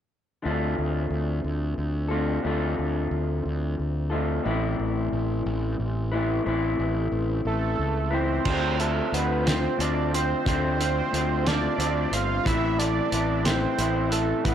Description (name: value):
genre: indie rock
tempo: 60 BPM (dotted quarters)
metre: 6/8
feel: straight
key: D dorian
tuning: A4 = 440 Hz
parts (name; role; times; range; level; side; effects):
- electric guitar through a small old amp; riff; 0.4-14.5 s; A2 to C5; -27 LUFS; left 3 dB; spring reverb
- fuzz fingered electric bass; bass; 0.5-14.5 s; G1 to D2; -27 LUFS; equal; overdrive
- lead with added fifth; melody; 7.5-14.5 s; A4 to F5; -28 LUFS; right 5 dB; chorus, slapback echo
- cloth-damped thuddy drum kit; drums; 8.5-14.5 s; crash cymbal, hi-hat, kick drum, snare drum; -28 LUFS; right 1 dB; none
room: light reverb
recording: none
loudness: -23 LUFS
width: side -9 dB against mid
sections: 0.4-8.5 A section; 8.5-14.5 B section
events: none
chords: 0.4 Dm7; 4.5 Amadd9; 8.5 Dm7; 12.4 Amadd9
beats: | 0.43 1.44 | 2.44 3.45 | 4.45 5.45 | 6.46 7.46 | 8.46 9.46 | 10.46 11.45 | 12.45 13.45 | 14.44